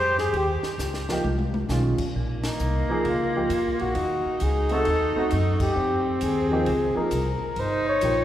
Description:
jazz, small-group swing and bop; 133 BPM; 4/4; swing 65% on 8ths; A4 = 440 Hz
mellow flugelhorn; melody; 0.0-8.2 s; Eb4 to Db5; -26 LUFS; left 2 dB
breathy alto saxophone; second line; 0.0-8.2 s; Bb3 to G4; -29 LUFS; right 2 dB
upright bass; bass; 0.0-8.2 s; G1 to Gb2; -27 LUFS; equal
compact cocktail drum kit; drums; 0.2-8.2 s; crash cymbal, hi-hat, kick drum, ride cymbal, snare drum, toms; -35 LUFS; equal
warm concert grand piano; accompaniment; 1.1-8.2 s; Eb3 to Ab4; -29 LUFS; right 1 dB
wet church reverb, RT60 2.8 s; recorded in a church or concert hall; -22 LUFS; side -12 dB against mid
0.0-2.1 A section; 2.1-8.2 A section
drum fill 0.8-1.7; band accent 2.4, 5.5
0.0 Abmaj7; 2.1 Bbm; 4.0 Gbm6/Db; 5.8 Dbmaj7; 7.6 Gm7b5

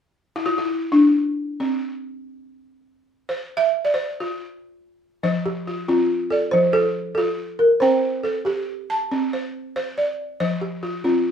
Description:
west african traditional; 93 BPM (dotted quarters); 12/8; straight; F major; A4 = 440 Hz
balafon; arpeggios; 0.4-11.3 s; F3 to A5; -21 LUFS; equal
balafon; melody; 5.5-11.3 s; F4 to C5; -19 LUFS; equal
wet studio reverb, RT60 0.6 s; heard from further back in the room; -19 LUFS; side -8 dB against mid
0.1-5.2 A section; 5.2-11.3 B section
balafon solo 0.1-5.2
0.1 N.C.; 5.2 F; 7.8 C5; 10.4 F5

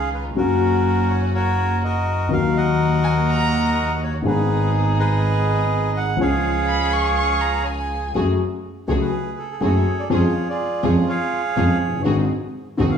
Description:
tango; 123 BPM; 4/4; rubato; F# harmonic minor from 8.2 s; A4 = 440 Hz
bandoneon; melody; 0.0-13.0 s; C#4 to F#5; -23 LUFS; right 2 dB
dark upright piano; accompaniment; 0.0-13.0 s; D#1 to G#4; -22 LUFS; left 3 dB
rich studio string section; stabs; 0.0-13.0 s; A3 to G#4; -30 LUFS; right 1 dB
clear double bass; bass; 0.0-13.0 s; F#1 to E#2; -23 LUFS; right 1 dB
warm violin; second line; 3.0-8.2 s; G#5 to C#6; -25 LUFS; left 2 dB
moderate large studio reverb, RT60 1.5 s; studio reverb; -18 LUFS; side -7 dB against mid
0.0-8.2 A section; 8.2-13.0 B section
0.4 F#; 2.3 D#m; 4.3 G#m; 6.2 C#; 8.2 F#madd9; 10.1 C#/E#; 12.1 G#7

